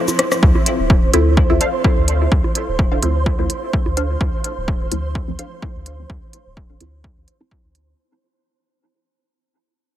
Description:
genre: dub techno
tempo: 127 BPM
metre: 4/4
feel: swing 54% on 16ths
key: D minor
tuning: A4 = 440 Hz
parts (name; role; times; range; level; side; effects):
- flickering grainy texture; texture; 0.0-8.0 s; C5; -26 LUFS; right 4 dB; built-in reverb, sidechain pumping
- deep house drum kit; drums; 0.1-7.9 s; cabasa, hi-hat, rim click; -20 LUFS; left 1 dB; dub echo
- bongos; percussion; 0.1-3.9 s; none; -30 LUFS; right 5 dB; sidechain pumping on perc, sidechain pumping on toms, dub echo
- soft dub sub bass; bass; 0.4-7.9 s; D1 to D2; -20 LUFS; equal; sidechain pumping
- electronic kick drum; drums; 0.4-7.6 s; none; -17 LUFS; equal; overdrive
- filtered dub chord stab; stabs; 1.1-7.7 s; F3 to E4; -24 LUFS; equal; phaser, sidechain pumping, dub echo
- filtered dub chord stab; riff; 1.6-6.8 s; D4 to F5; -28 LUFS; left 2 dB; phaser, analog chorus, sidechain pumping, dub echo
room: light reverb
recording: heavily compressed radio sound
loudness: -15 LUFS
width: side -12 dB against mid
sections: 0.4-8.0 A section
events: break 0.0-0.4; drum fill 0.0-0.4; fade-out 0.4-8.0; filter sweep on synth stab 0.4-8.0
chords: 0.4 Dm7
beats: | 0.43 0.90 1.37 1.84 | 2.32 2.79 3.26 3.73 | 4.21 4.68 5.15 5.62 | 6.10 6.57 7.04 7.51

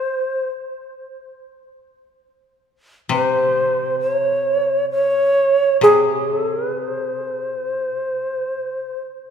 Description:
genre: japanese traditional, Japanese chamber music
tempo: 62-70 BPM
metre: 4/4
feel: rubato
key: unclear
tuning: A4 = 439 Hz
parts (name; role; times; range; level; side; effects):
- bright long shakuhachi; melody; 0.0-9.0 s; C5 to Db5; -17 LUFS; right 1 dB; none
- koto; accompaniment; 3.1-8.6 s; C3; -26 LUFS; left 5 dB; none
room: wet church reverb, RT60 3.4 s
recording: minimal, uncompressed stereo recording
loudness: -17 LUFS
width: side -8 dB against mid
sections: 0.0-9.3 A section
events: none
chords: none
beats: 0.49 1.36 | 2.23 3.11 4.00 4.90 | 5.81 6.71 7.63 8.57

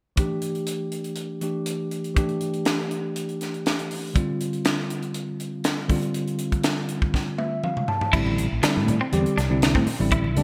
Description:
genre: electric jazz fusion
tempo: 121 BPM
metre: 4/4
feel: straight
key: A minor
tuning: A4 = 440 Hz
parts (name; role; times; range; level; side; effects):
- tine electric piano; accompaniment; 0.2-10.4 s; D3 to A5; -28 LUFS; equal; none
- crisp fusion drum kit; drums; 0.2-10.4 s; crash cymbal, hi-hat, kick drum, snare drum, toms; -28 LUFS; equal; gated reverb
- clean electric guitar; stabs; 8.1-10.3 s; C4 to E4; -30 LUFS; equal; subtle chorus
- mellow fretless electric bass; bass; 8.1-10.4 s; A1 to A2; -27 LUFS; equal; lush chorus
- congas; percussion; 8.3-10.4 s; none; -34 LUFS; equal; none
room: light reverb, studio ambience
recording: bright 1980s-style digital production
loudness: -25 LUFS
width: mono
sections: 0.2-8.1 A section; 8.1-10.4 B section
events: drum fill 7.1-8.1; tine electric piano fill 7.1-8.1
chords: 0.2 A7sus4; 4.2 G7sus4; 8.1 Am7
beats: | 0.18 0.68 1.18 1.67 | 2.17 2.67 3.17 3.66 | 4.16 4.66 5.16 5.65 | 6.15 6.65 7.14 7.64 | 8.14 8.63 9.13 9.62 | 10.12

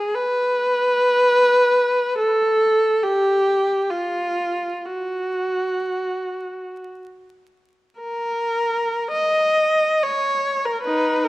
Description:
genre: classical, free, expressive piece for unaccompanied viola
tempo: free time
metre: none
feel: none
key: unclear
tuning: A4 = 440 Hz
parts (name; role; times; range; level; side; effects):
- rich viola; solo; 0.0-11.3 s; Eb4 to Eb5; -18 LUFS; equal; none
room: moderate recital hall reverb, RT60 1.7 s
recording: dark, warm production, vinyl crackle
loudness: -18 LUFS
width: side -17 dB against mid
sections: 0.0-11.3 A section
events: none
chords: none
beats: free time

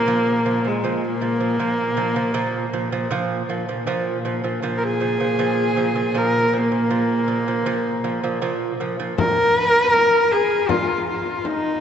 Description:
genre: mongolian traditional, Mongolian folk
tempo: 79 BPM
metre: 4/4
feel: straight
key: unclear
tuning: A4 = 440 Hz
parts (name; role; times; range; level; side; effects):
- clear horsehead fiddle; melody; 0.0-11.8 s; Ab3 to Bb4; -20 LUFS; equal; none
- lute; arpeggios; 0.0-9.1 s; Bb2 to F3; -25 LUFS; right 4 dB; none
- rich cello; drone; 0.0-9.3 s; Bb2; -27 LUFS; left 1 dB; none
- frame drum; percussion; 9.2-11.6 s; none; -27 LUFS; left 4 dB; none
room: wet cathedral reverb, RT60 5.5 s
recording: recorded in a church or concert hall, nothing above 8.0 kHz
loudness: -18 LUFS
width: side -8 dB against mid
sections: 0.0-9.2 A section; 9.2-11.8 B section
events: none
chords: 0.0 Bb5; 9.2 N.C.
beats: | 0.07 0.83 1.59 2.35 | 3.11 3.87 4.63 5.39 | 6.15 6.91 7.67 8.43 | 9.18 9.94 10.69 11.45

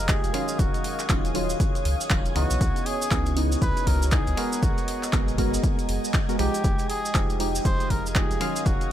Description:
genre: deep house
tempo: 119 BPM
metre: 4/4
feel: swing 60% on 16ths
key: F phrygian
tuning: A4 = 439 Hz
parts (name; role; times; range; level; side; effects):
- trumpet with cup mute; melody; 0.0-8.9 s; Gb4 to C5; -32 LUFS; equal; analog delay
- deep dark ambient pad; sustained chords; 0.0-8.9 s; Ab3 to Eb6; -35 LUFS; right 1 dB; chorus, built-in reverb, sidechain pumping
- percussive organ stab; stabs; 0.0-8.9 s; Db3 to F5; -29 LUFS; right 1 dB; chorus, phaser, sidechain pumping, diffuse ambient delay
- round analog bass; bass; 0.0-8.8 s; Eb1 to Db2; -28 LUFS; equal; tube saturation, sidechain pumping
- airy breathy pad; texture; 0.0-8.9 s; Cb4 to Eb5; -38 LUFS; left 1 dB; chorus, sidechain pumping
- analog string pad; texture; 0.0-8.9 s; Ab4 to Ab6; -42 LUFS; right 1 dB; ensemble chorus
- electronic kick drum; drums; 0.1-8.8 s; none; -25 LUFS; equal; none
- punchy analog drum machine; drums; 0.1-8.9 s; finger snaps, handclaps, hi-hat; -31 LUFS; equal; none
- cabasa; percussion; 0.1-8.9 s; none; -35 LUFS; right 3 dB; none
room: light reverb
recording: none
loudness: -22 LUFS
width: side -11 dB against mid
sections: 0.0-8.9 A section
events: none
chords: 0.0 Fm9; 0.6 Ebm9; 2.4 Dbm9; 4.4 Abm9; 6.6 Fm9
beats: 0.09 | 0.59 1.10 1.60 2.10 | 2.61 3.11 3.62 4.12 | 4.63 5.13 5.63 6.14 | 6.64 7.15 7.65 8.16 | 8.66

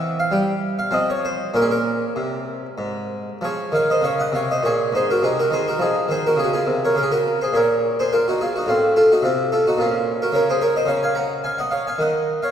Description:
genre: classical, baroque-style suite movement for harpsichord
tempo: 93-112 BPM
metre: 3/4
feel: rubato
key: Bb minor, Db major from 3.4 s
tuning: A4 = 439 Hz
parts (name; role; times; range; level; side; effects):
- harpsichord; solo; 0.0-12.5 s; Ab2 to Bb5; -18 LUFS; equal; none
room: wet church reverb, RT60 3.4 s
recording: recorded in a church or concert hall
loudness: -18 LUFS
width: side -9 dB against mid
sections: 0.0-3.4 A section; 3.4-12.5 A section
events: none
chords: 0.0 C/E; 0.9 F5; 1.5 Bbm; 3.4 Db; 5.2 Ab/C; 6.4 Db; 6.9 Bbm; 8.7 F/A; 9.8 Bbm; 10.3 Bbm/Db; 12.0 Cdim/Eb (rootless)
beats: 0.32 0.92 | 1.54 2.16 2.78 | 3.42 4.03 4.62 | 5.21 5.80 6.37 | 6.94 7.52 8.09 | 8.66 9.22 9.78 | 10.32 10.86 11.42 | 11.98

